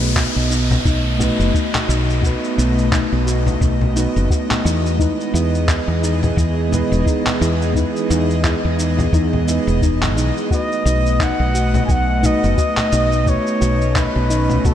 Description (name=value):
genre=sunset chillout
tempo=87 BPM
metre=4/4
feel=swing 57% on 16ths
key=unclear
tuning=A4 = 440 Hz
part: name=mellow tine electric piano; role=accompaniment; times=0.0-14.7 s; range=G#3 to B4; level=-24 LUFS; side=right 1 dB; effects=auto-pan, analog delay
part: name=airy breathy pad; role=sustained chords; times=0.0-14.7 s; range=E3 to D#5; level=-24 LUFS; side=equal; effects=chorus
part: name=woody fretless electric bass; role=bass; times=0.0-14.7 s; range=E1 to E2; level=-18 LUFS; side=equal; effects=tube saturation
part: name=electronic shaker, handclaps and congas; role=drums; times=0.0-14.7 s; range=none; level=-24 LUFS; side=left 1 dB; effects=none
part: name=downlifter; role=sound effects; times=0.0-5.0 s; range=none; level=-27 LUFS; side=left 1 dB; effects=none
part: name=soft round pluck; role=arpeggios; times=0.2-14.7 s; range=D#4 to F#4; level=-27 LUFS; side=left 3 dB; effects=chorus, analog delay
part: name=electronic kick drum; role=drums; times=0.2-14.7 s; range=none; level=-19 LUFS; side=equal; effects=none
part: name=breathy flugelhorn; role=melody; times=10.5-14.7 s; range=A4 to G#5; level=-21 LUFS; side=equal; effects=analog delay
room=moderate lush hall reverb, RT60 3.2 s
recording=dreamy mix soaked in reverb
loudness=-15 LUFS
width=side -10 dB against mid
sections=0.0-14.7 A section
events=none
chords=0.0 B7; 5.0 Emaj7; 10.5 B7